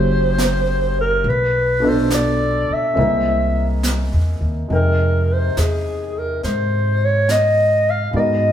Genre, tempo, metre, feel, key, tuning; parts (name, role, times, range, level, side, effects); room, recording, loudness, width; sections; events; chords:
jazz ballad; 70 BPM; 4/4; swing 69% on 8ths; F minor from 4.7 s; A4 = 441 Hz
breathy clarinet; melody; 0.0-8.5 s; Ab4 to F5; -18 LUFS; equal
warm concert grand piano; accompaniment; 0.0-8.5 s; B2 to G5; -23 LUFS; left 1 dB
upright bass; bass; 0.0-8.5 s; F#1 to Ab2; -20 LUFS; equal
jazz brush drum kit; drums; 0.4-8.5 s; brushed snare drum, hi-hat, snare drum; -26 LUFS; right 2 dB
wet large studio reverb, RT60 1.4 s; band playing live in one room; -15 LUFS; side -10 dB against mid
0.0-4.7 A section; 4.7-8.5 B section
0.0 F#7b9; 1.3 Bm7b5; 3.0 C7alt; 4.7 Fm11